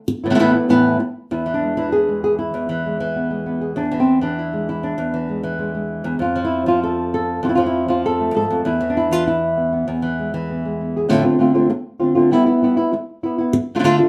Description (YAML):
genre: flamenco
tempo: 196 BPM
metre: 4/4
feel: straight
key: E phrygian dominant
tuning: A4 = 439 Hz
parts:
  - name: flamenco guitar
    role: solo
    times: 0.1-14.1 s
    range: E2 to A4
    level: -19 LUFS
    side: equal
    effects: none
room: wet studio reverb, RT60 0.6 s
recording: band playing live in one room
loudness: -19 LUFS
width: mono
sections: 0.0-1.3 A section; 1.3-11.1 B section; 11.1-14.1 A section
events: none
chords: 0.1 Esus4; 1.3 E; 6.2 F; 8.7 E; 11.1 F6; 12.3 G6; 13.5 Dm